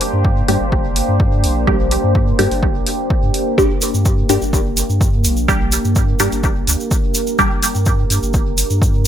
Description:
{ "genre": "dub techno", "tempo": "126 BPM", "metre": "4/4", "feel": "straight", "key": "G minor", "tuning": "A4 = 439 Hz", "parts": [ { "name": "deep dark ambient pad", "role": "sustained chords", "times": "0.0-9.1 s", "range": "Bb3 to C5", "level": "-21 LUFS", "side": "equal", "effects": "chorus, built-in reverb, sidechain pumping" }, { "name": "electronic hi-hat", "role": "drums", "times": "0.0-8.7 s", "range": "none", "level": "-23 LUFS", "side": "right 1 dB", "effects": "overdrive" }, { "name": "warm sub bass", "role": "bass", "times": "0.1-9.1 s", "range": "G1 to G2", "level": "-18 LUFS", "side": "equal", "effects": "sidechain pumping" }, { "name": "electronic kick drum", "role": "drums", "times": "0.2-8.9 s", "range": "none", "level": "-18 LUFS", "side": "equal", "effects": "overdrive" }, { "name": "filtered dub chord stab", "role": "stabs", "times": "0.5-7.5 s", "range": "G3 to G4", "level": "-20 LUFS", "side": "equal", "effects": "phaser, sidechain pumping, dub echo" }, { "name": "tube shaker", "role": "percussion", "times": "3.6-9.1 s", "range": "none", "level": "-22 LUFS", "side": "right 2 dB", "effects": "none" } ], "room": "light reverb", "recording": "bright 1980s-style digital production", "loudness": "-13 LUFS", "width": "side -10 dB against mid", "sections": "0.0-9.1 A section", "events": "filter sweep on synth stab 0.0-9.1", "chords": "0.0 Gm" }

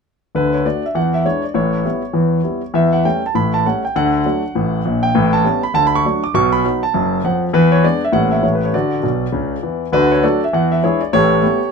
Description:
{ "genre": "jazz, stride piano", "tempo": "200 BPM", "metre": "4/4", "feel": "swing 60% on 8ths", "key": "D major", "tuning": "A4 = 442 Hz", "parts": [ { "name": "clear concert grand piano", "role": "solo", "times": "0.3-11.7 s", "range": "F#1 to D6", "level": "-14 LUFS", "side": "equal", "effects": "none" } ], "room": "moderate small room reverb, RT60 0.5 s", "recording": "minimal, uncompressed stereo recording", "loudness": "-14 LUFS", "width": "side -5 dB against mid", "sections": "0.3-9.9 A section; 9.9-11.7 A section", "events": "grand piano fill 9.0-9.9", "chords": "0.3 D; 0.9 E7; 1.5 A9; 2.7 A7/E; 3.3 A7; 3.9 D; 5.1 A9; 5.7 D; 6.3 B7; 7.5 E7; 8.1 A7b9; 8.4 A5; 8.7 D; 10.5 E7; 11.1 A9" }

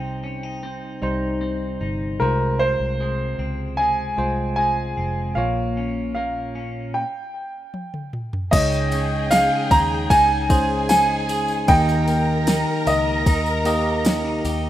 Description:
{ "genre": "pop ballad", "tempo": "76 BPM", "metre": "4/4", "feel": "straight", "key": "unclear", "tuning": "A4 = 440 Hz", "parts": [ { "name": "clear concert grand piano", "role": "melody", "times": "0.0-14.4 s", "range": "Bb4 to Bb5", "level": "-22 LUFS", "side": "equal", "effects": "none" }, { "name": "bell-like tine electric piano", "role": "accompaniment", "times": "0.0-14.7 s", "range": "Bb2 to Eb5", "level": "-26 LUFS", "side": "right 1 dB", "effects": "none" }, { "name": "twelve-string electric guitar", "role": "arpeggios", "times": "0.0-14.7 s", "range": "Bb2 to Ab4", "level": "-29 LUFS", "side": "left 1 dB", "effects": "none" }, { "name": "vintage muted fingered electric bass", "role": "bass", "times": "0.0-14.7 s", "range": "F1 to Eb2", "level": "-27 LUFS", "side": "equal", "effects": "none" }, { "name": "smooth R&B drum kit", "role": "drums", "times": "7.7-14.6 s", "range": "crash cymbal, kick drum, ride cymbal, snare drum, toms", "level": "-23 LUFS", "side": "equal", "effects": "overdrive" }, { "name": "warm studio violin section", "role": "second line", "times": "8.5-14.7 s", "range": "Ab4 to Bb5", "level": "-27 LUFS", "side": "left 1 dB", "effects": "none" }, { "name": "tambourine", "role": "percussion", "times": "8.7-14.6 s", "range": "none", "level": "-36 LUFS", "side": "left 4 dB", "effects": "none" } ], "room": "light reverb, digital ambience", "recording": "rough home demo mix", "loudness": "-18 LUFS", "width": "side -12 dB against mid", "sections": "0.0-8.5 A section; 8.5-14.7 B section", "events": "stop 6.9-8.5; drum fill 7.7-8.5", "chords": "0.0 Cm; 2.2 Fm/C; 5.4 Bbm; 6.9 N.C.; 8.5 Dbsus2; 11.7 Eb" }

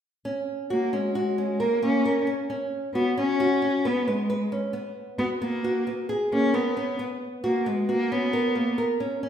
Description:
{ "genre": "contemporary instrumental, contemporary", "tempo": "134 BPM", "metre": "5/4", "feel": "straight", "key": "G# minor", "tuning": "A4 = 440 Hz", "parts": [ { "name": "nylon-string guitar", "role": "arpeggios", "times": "0.2-9.3 s", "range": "A#3 to B4", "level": "-26 LUFS", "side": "right 1 dB", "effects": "none" }, { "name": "warm cello", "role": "melody", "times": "0.7-8.8 s", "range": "G#3 to C#4", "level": "-26 LUFS", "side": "left 1 dB", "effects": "none" } ], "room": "wet recital hall reverb, RT60 1.3 s", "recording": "recorded in a church or concert hall", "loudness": "-23 LUFS", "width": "side -9 dB against mid", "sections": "0.3-9.3 A section", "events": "none", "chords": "0.3 G#9sus4; 2.5 C#7sus4; 4.7 G#m9 (rootless); 7.0 B5" }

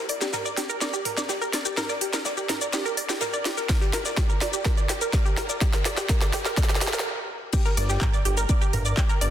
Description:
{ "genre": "melodic techno", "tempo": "125 BPM", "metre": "4/4", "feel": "straight", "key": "G minor", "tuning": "A4 = 440 Hz", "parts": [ { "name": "wide unison pluck", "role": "arpeggios", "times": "0.0-9.3 s", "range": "G4 to D6", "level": "-28 LUFS", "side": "moving between left 2 dB and right 4 dB", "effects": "auto-pan, sidechain pumping, dub echo" }, { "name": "natural country drum kit", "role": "drums", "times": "0.1-9.3 s", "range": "ride cymbal, snare drum", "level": "-39 LUFS", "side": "left 3 dB", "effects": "none" }, { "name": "techno drum kit", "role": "drums", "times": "0.1-9.3 s", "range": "crash cymbal, handclaps, hi-hat, shaker, snare drum, toms", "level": "-28 LUFS", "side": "left 1 dB", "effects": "high-pass filter on snare, high-pass filter on perc, high-pass filter on hats, high-pass filter on toms, high-pass filter on cymbals" }, { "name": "electronic kick drum", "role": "drums", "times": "3.7-9.1 s", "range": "none", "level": "-23 LUFS", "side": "equal", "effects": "none" }, { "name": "fat analog bass", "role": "bass", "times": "7.8-9.3 s", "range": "G1", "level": "-25 LUFS", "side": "equal", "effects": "sidechain pumping" } ], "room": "moderate lush hall reverb, RT60 1.7 s, digital ambience", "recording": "dense, heavily limited modern master", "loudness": "-22 LUFS", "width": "side -11 dB against mid", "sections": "0.0-7.5 A section; 7.5-9.3 B section", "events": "build-up 0.0-7.5; drum fill 0.0-7.1; stop 7.1-7.5; drop 7.5-9.3", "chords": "0.0 Gm" }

